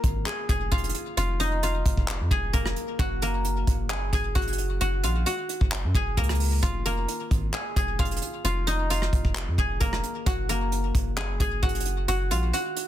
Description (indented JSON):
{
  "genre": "hip hop, trap",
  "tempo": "132 BPM",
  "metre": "4/4",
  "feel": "half-time",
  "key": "F phrygian",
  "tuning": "A4 = 439 Hz",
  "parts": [
    { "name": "guzheng", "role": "melody", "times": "0.0-12.9 s", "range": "Bb3 to Ab5", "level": "-29 LUFS", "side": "left 1 dB", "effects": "ping-pong delay" },
    { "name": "long sustained 808-style bass", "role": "bass", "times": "0.0-12.5 s", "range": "F1 to Gb2", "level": "-28 LUFS", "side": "equal", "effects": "none" },
    { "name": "soft brush drum kit", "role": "drums", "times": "0.0-12.9 s", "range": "handclaps, hi-hat, kick drum, rim click", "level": "-27 LUFS", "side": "equal", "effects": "soft clipping on snare" }
  ],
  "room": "small room ambience",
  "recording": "dense, heavily limited modern master",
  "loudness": "-23 LUFS",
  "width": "side -12 dB against mid",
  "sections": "0.0-12.9 A section",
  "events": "none",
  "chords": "0.0 Fm; 3.0 Gb; 6.6 Fm; 10.3 Gb"
}